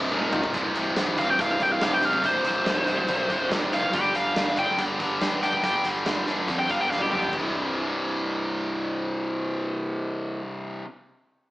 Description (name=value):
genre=hard rock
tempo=141 BPM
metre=4/4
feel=straight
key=unclear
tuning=A4 = 439 Hz
part: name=distorted electric guitar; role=riff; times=0.0-10.9 s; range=C2 to G3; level=-26 LUFS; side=equal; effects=overdrive
part: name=fuzz picked electric bass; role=bass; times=0.0-10.4 s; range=C1 to G2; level=-33 LUFS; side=equal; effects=overdrive
part: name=big rock drum kit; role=drums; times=0.1-7.4 s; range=crash cymbal, hi-hat, kick drum, snare drum, toms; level=-30 LUFS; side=equal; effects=none
part: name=high-gain lead guitar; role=melody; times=1.2-7.3 s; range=G4 to G5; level=-25 LUFS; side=equal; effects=distortion
room=wet stone room reverb, RT60 1.1 s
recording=band playing live in one room, small speaker sound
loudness=-22 LUFS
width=side -18 dB against mid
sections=0.5-7.3 A section; 7.3-10.7 B section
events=drum fill 0.1-0.5, 6.9-7.3; lead electric guitar solo 0.5-7.3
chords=0.1 Eb5; 0.5 C5; 3.9 G5; 7.3 C5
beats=0.12 | 0.55 0.97 1.39 1.81 | 2.24 2.66 3.09 3.51 | 3.94 4.36 4.78 5.21 | 5.63 6.06 6.48 6.91 | 7.33 7.75 8.18 8.60 | 9.03 9.45 9.88 10.30